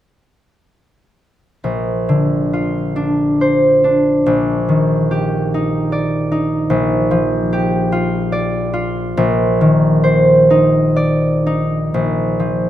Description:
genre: classical, solo harp piece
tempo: 40-52 BPM (dotted quarters)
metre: 6/8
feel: rubato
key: Bb major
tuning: A4 = 440 Hz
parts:
  - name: concert harp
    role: solo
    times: 1.6-12.7 s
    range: Bb1 to D5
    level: -13 LUFS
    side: equal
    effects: none
room: moderate recital hall reverb, RT60 1.5 s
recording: close, detailed microphones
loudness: -13 LUFS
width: side -12 dB against mid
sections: 1.6-12.0 A section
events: none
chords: 1.6 Bbadd9; 4.3 Ebmaj7/Bb; 6.7 Bb6; 9.2 Cm9/Bb; 12.0 Bb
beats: | 1.64 2.98 | 4.28 5.53 | 6.70 7.93 | 9.19 10.53 | 11.96

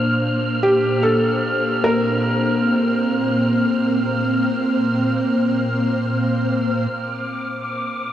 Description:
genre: ambient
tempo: free time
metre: none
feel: none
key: Bb major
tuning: A4 = 441 Hz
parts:
  - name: ethereal airy pad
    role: sustained chords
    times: 0.0-8.1 s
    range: Bb2 to C5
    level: -19 LUFS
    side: equal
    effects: ensemble chorus, built-in reverb
  - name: wind-like tuned noise texture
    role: texture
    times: 0.0-8.1 s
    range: D6 to F6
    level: -26 LUFS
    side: right 1 dB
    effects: built-in reverb
  - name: felt-muted upright piano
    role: melody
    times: 0.6-6.0 s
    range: G4 to Bb4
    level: -22 LUFS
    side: equal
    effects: none
room: wet huge ambient reverb, RT60 8.9 s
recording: worn, warbling old tape, cassette tape, warbly pitch drift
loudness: -17 LUFS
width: side -11 dB against mid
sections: 0.0-6.9 A section; 6.9-8.1 B section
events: none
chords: 0.0 Bbadd9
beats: free time

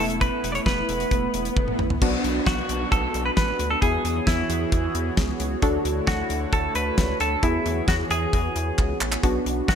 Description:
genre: synth-pop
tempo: 133 BPM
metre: 4/4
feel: straight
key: unclear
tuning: A4 = 440 Hz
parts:
  - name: direct-recorded clean electric guitar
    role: melody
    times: 0.0-9.8 s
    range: E4 to D5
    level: -26 LUFS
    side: right 1 dB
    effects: wide subtle chorus, ping-pong delay
  - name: funky polysynth comp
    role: accompaniment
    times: 0.0-9.8 s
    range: A3 to A4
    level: -29 LUFS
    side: equal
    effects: chorus
  - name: lush unison pad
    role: sustained chords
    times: 0.0-9.8 s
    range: D3 to C#5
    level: -31 LUFS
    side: equal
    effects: chorus
  - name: rubbery square bass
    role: bass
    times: 0.0-9.8 s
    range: E1 to E2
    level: -29 LUFS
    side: equal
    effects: none
  - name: swell and downlifter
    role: sound effects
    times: 0.8-5.6 s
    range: none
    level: -33 LUFS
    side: equal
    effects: none
  - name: damped 70s drum kit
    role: drums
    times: 0.1-9.8 s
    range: crash cymbal, handclaps, hi-hat, kick drum, snare drum, toms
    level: -25 LUFS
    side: equal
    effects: none
room: moderate plate reverb, RT60 2.3 s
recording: bright 1980s-style digital production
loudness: -21 LUFS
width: side -8 dB against mid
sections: 0.0-2.0 A section; 2.0-9.8 B section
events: swell 0.8-2.0; drum fill 1.6-2.0, 8.8-9.2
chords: 0.0 Esus4; 2.0 Bm; 3.8 E6; 5.6 Dmaj7; 7.4 E6; 9.2 Bm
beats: | 0.21 0.66 1.11 1.56 | 2.02 2.47 2.92 3.37 | 3.82 4.27 4.72 5.17 | 5.63 6.08 6.53 6.98 | 7.43 7.88 8.33 8.78 | 9.23 9.69

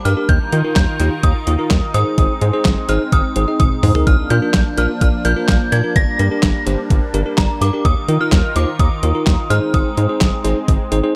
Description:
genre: synth-pop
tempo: 127 BPM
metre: 4/4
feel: straight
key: unclear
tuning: A4 = 443 Hz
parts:
  - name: synth chime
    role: melody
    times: 0.0-11.1 s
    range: Bb5 to Bb6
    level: -25 LUFS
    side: equal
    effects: ensemble chorus, dub echo
  - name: phased analog pad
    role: sustained chords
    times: 0.0-11.2 s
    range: Eb3 to Bb4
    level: -28 LUFS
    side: equal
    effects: phaser, chorus
  - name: bell-like tine electric piano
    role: accompaniment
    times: 0.1-11.2 s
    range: D4 to Eb5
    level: -24 LUFS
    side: equal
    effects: dub echo
  - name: rubbery square bass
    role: bass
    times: 0.1-11.0 s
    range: G1 to Eb3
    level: -19 LUFS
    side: equal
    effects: none
  - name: detuned 8-bit digital drum machine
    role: drums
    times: 0.1-11.0 s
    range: handclaps, hi-hat, kick drum, snare drum, toms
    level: -18 LUFS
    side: equal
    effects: dub echo
room: little or no reverb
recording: echo-heavy mix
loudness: -16 LUFS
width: mono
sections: 0.0-11.2 A section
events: drum fill 3.6-4.1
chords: 0.3 Ebsus2; 1.9 Ab; 4.1 Bb; 6.0 Gm; 7.8 Ebsus2; 9.5 Ab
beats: | 0.29 0.76 1.23 1.71 | 2.18 2.65 3.12 3.60 | 4.07 4.54 5.01 5.49 | 5.96 6.43 6.90 7.38 | 7.85 8.32 8.79 9.27 | 9.74 10.21 10.68 11.15

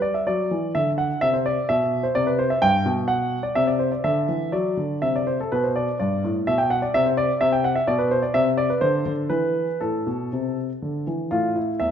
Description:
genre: classical-period piano sonatina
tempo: 117-130 BPM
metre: 3/4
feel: rubato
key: A minor from 8.3 s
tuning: A4 = 440 Hz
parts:
  - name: warm grand piano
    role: solo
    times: 0.0-11.9 s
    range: E2 to G5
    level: -20 LUFS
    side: equal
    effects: none
room: wet recital hall reverb, RT60 1.4 s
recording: minimal, uncompressed stereo recording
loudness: -20 LUFS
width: side -8 dB against mid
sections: 0.0-11.3 A section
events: none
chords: 0.0 N.C.; 1.2 Cmaj9; 2.6 G; 3.6 N.C.; 4.0 D; 5.5 G; 6.9 Cmaj9; 8.3 N.C.; 9.8 Am; 11.3 A5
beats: 0.26 0.74 | 1.22 1.69 2.15 | 2.62 3.08 3.55 | 4.04 4.52 5.02 | 5.51 5.99 6.47 | 6.94 7.41 7.88 | 8.34 8.82 9.30 | 9.81 10.32 10.81 | 11.31 11.79

